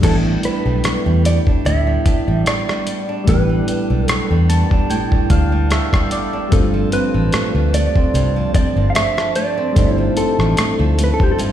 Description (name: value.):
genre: contemporary R&B.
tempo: 74 BPM.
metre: 4/4.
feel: swing 54% on 16ths.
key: A minor.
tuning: A4 = 440 Hz.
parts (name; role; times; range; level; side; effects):
mellow electric guitar; melody; 0.0-11.4 s; G4 to F5; -22 LUFS; right 1 dB; ping-pong delay.
soft electric-piano-like synth keys; accompaniment; 0.0-11.5 s; G3 to A5; -23 LUFS; left 3 dB; chorus.
flamenco guitar; arpeggios; 0.0-11.5 s; G2 to F#4; -22 LUFS; right 5 dB; ping-pong delay.
vintage muted fingered electric bass; bass; 0.0-11.1 s; G1 to E2; -16 LUFS; equal; none.
dusty soul sampler-style drum kit; drums; 0.0-11.5 s; crash cymbal, hi-hat, kick drum, rim click; -18 LUFS; equal; none.
room: little or no reverb.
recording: played on a big sound system in a bare room, stone room reverb.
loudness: -14 LUFS.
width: side -11 dB against mid.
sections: 0.0-11.5 A section.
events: synth keys fill 4.1-6.5.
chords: 0.0 A9sus4; 6.5 G9sus4.